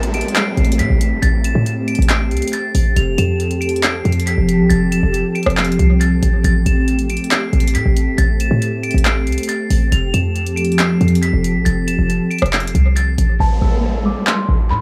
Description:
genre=hip hop, trap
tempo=138 BPM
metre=4/4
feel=half-time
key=A minor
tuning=A4 = 440 Hz
part: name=metallic FM bell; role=melody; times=0.0-14.8 s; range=A5 to F7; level=-26 LUFS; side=equal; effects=chorus, low-pass filter, tape echo
part: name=glassy FM pad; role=sustained chords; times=0.1-13.4 s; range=F3 to A4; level=-22 LUFS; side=equal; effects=ensemble chorus, built-in reverb, phaser
part: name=short 808-style bass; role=bass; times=0.0-14.8 s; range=E1 to A2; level=-18 LUFS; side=equal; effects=none
part: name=trap drum kit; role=drums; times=0.0-14.4 s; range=handclaps, hi-hat, rim click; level=-24 LUFS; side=equal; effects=overdrive, tape echo
part: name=downlifter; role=sound effects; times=0.0-3.0, 13.4-14.8 s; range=none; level=-26 LUFS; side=equal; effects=none
room=little or no reverb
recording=echo-heavy mix, small room ambience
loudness=-16 LUFS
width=mono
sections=0.0-13.4 A section; 13.4-14.8 B section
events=hi-hats muted 13.4-14.8; filter sweep on synth bell 13.4-14.8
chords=0.0 Am7; 3.0 Fadd9; 6.4 Am7; 9.9 Fadd9; 13.4 Am

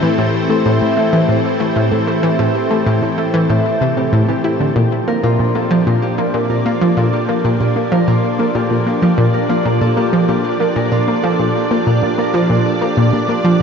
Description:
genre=ambient, sequencer-driven space music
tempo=95 BPM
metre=4/4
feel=straight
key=unclear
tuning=A4 = 440 Hz
part: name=lush unison pad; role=sustained chords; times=0.0-13.6 s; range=E3 to A5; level=-19 LUFS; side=equal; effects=chorus
part: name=Celtic harp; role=arpeggios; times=0.0-13.6 s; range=E4 to Bb4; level=-22 LUFS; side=moving between left 3 dB and right 4 dB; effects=auto-pan, ping-pong delay
part: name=analog pluck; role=riff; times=0.0-13.6 s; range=A2 to E4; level=-15 LUFS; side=equal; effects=chorus, ping-pong delay
part: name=bubbling stepped-filter texture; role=texture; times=0.0-13.6 s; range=D4 to G5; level=-29 LUFS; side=equal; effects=none
room=wet lush hall reverb, RT60 3.3 s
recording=dark, warm production, nothing above 7.5 kHz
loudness=-13 LUFS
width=side -6 dB against mid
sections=0.0-13.6 A section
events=none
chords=0.0 Am; 4.8 Bb

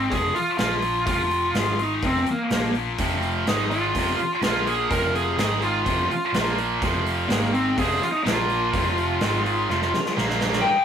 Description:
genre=hard rock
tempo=125 BPM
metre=4/4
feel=straight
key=F minor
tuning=A4 = 440 Hz
part: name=smooth overdriven lead guitar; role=melody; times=0.0-10.8 s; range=Bb3 to G5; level=-23 LUFS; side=equal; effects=none
part: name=high-gain distorted guitar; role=riff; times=0.0-10.8 s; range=F2 to Eb4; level=-28 LUFS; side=left 5 dB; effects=distortion
part: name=hollow-body short-scale picked electric bass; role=bass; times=0.0-10.6 s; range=F1 to Bb1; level=-30 LUFS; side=equal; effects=none
part: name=gated 80s drum kit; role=drums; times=0.1-10.6 s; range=hi-hat, kick drum, snare drum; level=-27 LUFS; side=equal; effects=none
part: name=heavy high-gain guitar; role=riff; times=3.0-10.6 s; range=F2 to Bb3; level=-27 LUFS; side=right 6 dB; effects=distortion
room=moderate studio reverb, RT60 0.5 s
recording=rough rehearsal-room recording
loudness=-20 LUFS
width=side -8 dB against mid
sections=0.0-10.6 A section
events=drum fill 9.7-10.6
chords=0.1 Fm; 0.6 Bb5; 1.1 F5; 1.6 Ab5; 2.0 F5; 2.5 Bb5; 3.0 F5; 3.5 Ab5; 4.0 F5; 4.4 Bb5; 4.9 Fm; 5.4 Ab5; 5.9 F5; 6.3 Bb5; 6.8 F5; 7.3 Ab5; 7.8 Fm; 8.3 Bb5; 8.7 F5; 9.2 Ab5; 9.7 F5; 10.2 Bb5

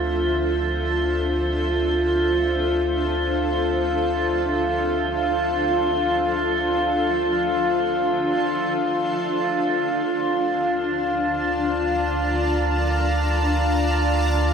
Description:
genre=ambient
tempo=free time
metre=none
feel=none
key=unclear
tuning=A4 = 442 Hz
part: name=granular cloud pad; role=sustained chords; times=0.0-14.5 s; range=D4 to Bb5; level=-24 LUFS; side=left 1 dB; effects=built-in reverb
part: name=deep rumbling drone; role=bass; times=0.0-14.5 s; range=D2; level=-27 LUFS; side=equal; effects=built-in reverb
part: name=drifting glass-harmonics texture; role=texture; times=0.0-14.5 s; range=F4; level=-22 LUFS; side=equal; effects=chorus, built-in reverb
room=wet huge ambient reverb, RT60 8.2 s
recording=none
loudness=-20 LUFS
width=side -6 dB against mid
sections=0.0-14.5 A section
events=fade-in on ambient pad 0.0-14.5; fade-in on synth drone 0.0-14.5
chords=0.0 Bbmaj9#11/D (rootless); 9.0 Bbmaj7/D

